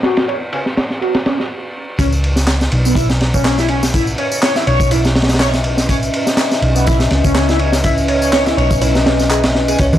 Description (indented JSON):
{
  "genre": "breakbeat, breaks",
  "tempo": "123 BPM",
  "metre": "4/4",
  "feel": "swing 55% on 16ths",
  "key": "C# minor",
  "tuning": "A4 = 440 Hz",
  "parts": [
    { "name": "dark analog pad", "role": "sustained chords", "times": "0.0-10.0 s", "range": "C#4 to G#5", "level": "-20 LUFS", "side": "left 1 dB", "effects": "wide subtle chorus, sidechain pumping" },
    { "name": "overdriven synth lead", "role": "riff", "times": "0.0-9.9 s", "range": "B3 to C#5", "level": "-19 LUFS", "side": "equal", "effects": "phaser, tube saturation, lush chorus, cassette tape, tape echo" },
    { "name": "hollow-body short-scale picked electric bass", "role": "bass", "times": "0.0-10.0 s", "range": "B1 to C#2", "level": "-16 LUFS", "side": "equal", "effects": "none" },
    { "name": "crunchy breakbeat drum kit", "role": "drums", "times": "0.0-9.9 s", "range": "kick drum, ride cymbal, snare drum", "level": "-17 LUFS", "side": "equal", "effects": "low-pass filter on kick, low-pass filter on cymbals, low-pass filter on snare, low-pass filter on room" },
    { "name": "electronic tambourine and handclaps", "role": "drums", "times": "2.0-10.0 s", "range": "none", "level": "-24 LUFS", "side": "equal", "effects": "overdrive" },
    { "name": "congas", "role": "percussion", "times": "9.9-10.0 s", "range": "none", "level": "-10 LUFS", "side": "right 1 dB", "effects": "none" }
  ],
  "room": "light reverb",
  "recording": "dry, gritty hardware recording, transformer saturation, vinyl crackle",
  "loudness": "-12 LUFS",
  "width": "side -12 dB against mid",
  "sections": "0.0-2.0 A section; 2.0-10.0 B section",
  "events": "filter sweep on analog synth lead 0.0-2.0; stop 1.5-2.0; drop 2.0-10.0",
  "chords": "0.0 C#7sus2; 2.0 C#m9",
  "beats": "| 0.04 0.53 1.01 1.50 | 1.99 2.48 2.96 3.45 | 3.94 4.43 4.92 5.40 | 5.89 6.38 6.87 7.35 | 7.84 8.33 8.82 9.31 | 9.79"
}